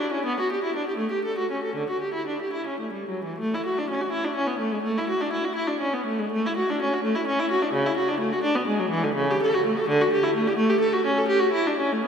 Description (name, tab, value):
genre	classical, baroque-style suite movement for unaccompanied viola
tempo	67-89 BPM (dotted quarters)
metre	6/8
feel	rubato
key	D major, A major from 3.4 s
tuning	A4 = 442 Hz
part	warm viola	solo	0.0-12.1 s	C#3 to A4	-22 LUFS	equal	none
room	wet church reverb, RT60 3.0 s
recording	none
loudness	-22 LUFS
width	side -7 dB against mid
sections	0.0-3.4 A section; 3.4-12.1 A section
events	none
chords	none